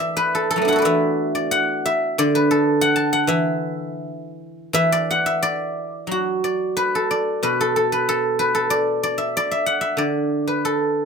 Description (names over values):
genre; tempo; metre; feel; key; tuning
chinese traditional, Chinese solo plucked strings; 88-96 BPM; 2/4; rubato; D gong mode; A4 = 440 Hz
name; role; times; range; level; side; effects
guzheng; solo; 0.0-11.1 s; B2 to A5; -18 LUFS; equal; none
room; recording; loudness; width
light reverb; close, detailed microphones; -18 LUFS; side -5 dB against mid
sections
0.0-6.1 A section; 6.1-11.1 B section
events
none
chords
none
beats
0.19 | 0.86 1.54 | 2.19 2.82 | 3.45 4.09 | 4.75 5.42 | 6.10 6.77 | 7.43 8.08 | 8.71 9.35 | 9.99 10.65